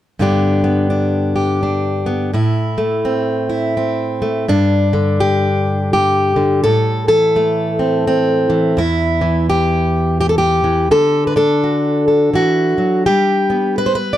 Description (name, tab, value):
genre	folk, solo fingerstyle acoustic guitar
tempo	84 BPM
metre	3/4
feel	swing 62% on 8ths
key	G major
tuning	A4 = 440 Hz
part	fingerpicked plugged-in steel-string acoustic guitar	solo	0.2-14.2 s	E2 to D5	-13 LUFS	equal	none
room	light reverb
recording	dark, warm production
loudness	-13 LUFS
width	side -12 dB against mid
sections	0.2-4.5 A section; 4.5-14.2 B section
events	none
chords	0.2 G; 2.3 Am; 4.5 G5; 6.6 Am; 8.8 N.C.; 10.9 D; 13.1 G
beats	| 0.19 0.91 1.62 | 2.34 3.05 3.77 | 4.49 5.20 5.92 | 6.63 7.34 8.06 | 8.77 9.49 10.20 | 10.92 11.63 12.35 | 13.06 13.78